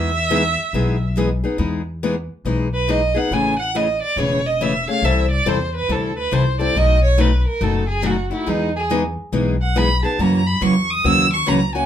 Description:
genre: acoustic string swing (jazz manouche)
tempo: 140 BPM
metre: 4/4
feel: swing 64% on 8ths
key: E major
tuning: A4 = 440 Hz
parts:
  - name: rich violin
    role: melody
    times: 0.0-11.9 s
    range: D#4 to E6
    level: -20 LUFS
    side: right 2 dB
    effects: none
  - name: picked steel-string acoustic guitar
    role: accompaniment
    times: 0.0-11.9 s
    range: B2 to A4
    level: -22 LUFS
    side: left 4 dB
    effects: none
  - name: picked steel-string acoustic guitar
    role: accompaniment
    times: 0.0-1.3, 8.5-11.6 s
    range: E3 to A#4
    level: -23 LUFS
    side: right 4 dB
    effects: none
  - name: upright bass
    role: bass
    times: 0.0-11.8 s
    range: E1 to F#2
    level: -21 LUFS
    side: left 1 dB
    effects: none
room: wet club reverb, RT60 0.6 s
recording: minimal, uncompressed stereo recording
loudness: -16 LUFS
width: side -10 dB against mid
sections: 0.0-1.6 A section; 1.6-11.9 B section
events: violin solo 1.6-11.9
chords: 0.0 Emaj7; 3.3 Amaj7; 5.0 C6; 6.8 B7; 8.5 Emaj7; 10.2 F#7

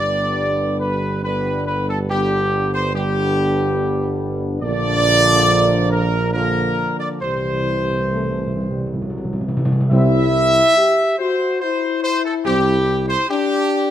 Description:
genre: classical, ceremonial fanfare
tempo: 65-73 BPM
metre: 3/4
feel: straight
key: unclear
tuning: A4 = 439 Hz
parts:
  - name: clear trumpet section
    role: melody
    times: 0.0-13.9 s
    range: G4 to E5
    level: -18 LUFS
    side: equal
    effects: none
  - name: mellow French horn section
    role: sustained chords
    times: 0.0-13.9 s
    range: E3 to G4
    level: -24 LUFS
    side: left 6 dB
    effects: none
  - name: mellow trombone section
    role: sustained chords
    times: 0.0-12.8 s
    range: D3 to C4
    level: -26 LUFS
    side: right 2 dB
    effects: none
  - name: mellow tuba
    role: bass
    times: 0.0-13.2 s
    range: G1 to C2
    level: -22 LUFS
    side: right 3 dB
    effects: none
  - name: timpani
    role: percussion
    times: 0.0-0.8, 7.2-11.2 s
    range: G2 to C3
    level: -22 LUFS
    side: equal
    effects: none
room: moderate recital hall reverb, RT60 1.3 s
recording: close, detailed microphones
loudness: -16 LUFS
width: side -10 dB against mid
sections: 0.0-9.9 A section; 9.9-13.9 A section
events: timpani fill 7.2-9.9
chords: 0.0 G; 4.6 Bb; 7.2 C

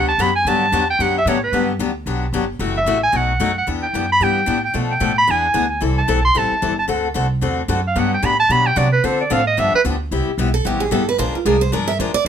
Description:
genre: acoustic string swing (jazz manouche)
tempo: 224 BPM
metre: 4/4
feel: swing 57% on 8ths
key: G major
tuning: A4 = 437 Hz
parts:
  - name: bright clarinet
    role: melody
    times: 0.0-9.8 s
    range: B4 to C6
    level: -17 LUFS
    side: right 2 dB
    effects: none
  - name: picked steel-string acoustic guitar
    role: accompaniment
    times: 0.0-12.3 s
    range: B2 to Bb4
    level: -21 LUFS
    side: left 6 dB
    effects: none
  - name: upright bass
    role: bass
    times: 0.0-12.3 s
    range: F#1 to D3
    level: -22 LUFS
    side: right 1 dB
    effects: none
  - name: picked steel-string acoustic guitar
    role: second line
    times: 10.5-12.3 s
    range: F4 to E5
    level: -19 LUFS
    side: right 6 dB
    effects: none
room: light reverb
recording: none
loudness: -15 LUFS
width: side -8 dB against mid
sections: 0.0-1.5 A section; 1.5-10.1 A section; 10.1-12.3 A section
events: clarinet solo 0.0-10.1; steel-string acoustic guitar solo 10.1-12.3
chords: 0.0 Gmaj7; 2.6 F#m7b5; 3.1 B7; 3.7 Em7; 4.7 Bm7b5; 5.3 E7; 5.8 Am7; 6.9 D7; 8.0 Gmaj7; 9.0 Dm7; 9.6 G7; 10.1 Cmaj7; 11.2 Bb9

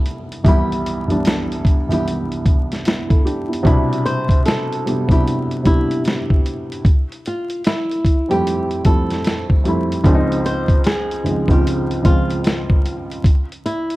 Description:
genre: lo-fi hip hop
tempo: 75 BPM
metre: 4/4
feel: swing 62% on 16ths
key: C major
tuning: A4 = 438 Hz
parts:
  - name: flamenco guitar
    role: melody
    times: 0.0-14.0 s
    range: E4 to C5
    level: -23 LUFS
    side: equal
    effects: none
  - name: felt-muted upright piano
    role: accompaniment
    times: 0.0-13.3 s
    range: C2 to A4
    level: -19 LUFS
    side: equal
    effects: none
  - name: dusty soul sampler-style drum kit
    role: drums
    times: 0.1-14.0 s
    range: hi-hat, kick drum, snare drum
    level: -16 LUFS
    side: equal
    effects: none
room: light reverb, studio ambience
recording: dark, warm production, vinyl crackle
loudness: -15 LUFS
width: side -18 dB against mid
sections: 0.0-3.6 A section; 3.6-14.0 B section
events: none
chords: 0.0 Cmaj9; 6.8 Fmaj9; 10.0 Dbmaj9; 13.2 N.C.

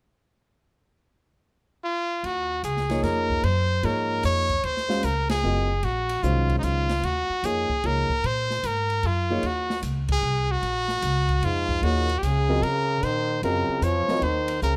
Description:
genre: modal jazz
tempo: 150 BPM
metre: 3/4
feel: swing 66% on 8ths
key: Eb dorian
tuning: A4 = 435 Hz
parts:
  - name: brilliant trumpet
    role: melody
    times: 1.8-14.7 s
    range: Eb4 to Db5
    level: -28 LUFS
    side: equal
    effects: none
  - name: upright bass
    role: bass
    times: 2.2-14.8 s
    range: Gb1 to Db3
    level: -29 LUFS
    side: equal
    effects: none
  - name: open jazz drum kit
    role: drums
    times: 2.2-14.7 s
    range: hi-hat, kick drum, ride cymbal, snare drum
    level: -37 LUFS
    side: equal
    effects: none
  - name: warm grand piano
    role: accompaniment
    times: 2.9-9.4, 11.8-14.2 s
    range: Eb3 to F5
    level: -32 LUFS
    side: equal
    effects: none
  - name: bright trombone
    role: second line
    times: 11.4-14.7 s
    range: Ab2 to F3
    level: -32 LUFS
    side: equal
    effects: none
room: light reverb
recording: none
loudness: -25 LUFS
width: mono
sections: 1.0-2.2 A section; 2.2-14.8 B section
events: band accent 5.2, 10.0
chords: 1.0 N.C.; 2.2 Ebm11

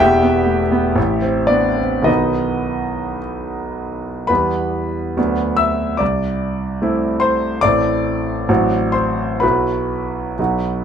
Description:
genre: classical, romantic character piece for solo piano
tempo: 50-75 BPM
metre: 2/4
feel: rubato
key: unclear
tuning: A4 = 440 Hz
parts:
  - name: clear concert grand piano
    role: solo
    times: 0.0-10.8 s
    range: E1 to E6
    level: -16 LUFS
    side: equal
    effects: none
room: light reverb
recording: dark, warm production, nothing above 10.3 kHz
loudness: -16 LUFS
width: side -8 dB against mid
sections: 0.0-4.3 A section; 4.3-10.8 B section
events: none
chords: 0.0 Em; 1.0 Am; 2.1 B; 4.3 Em; 5.2 Bm/D; 6.0 Am/C; 7.6 Am; 8.5 F#dim/A; 9.4 Bsus4

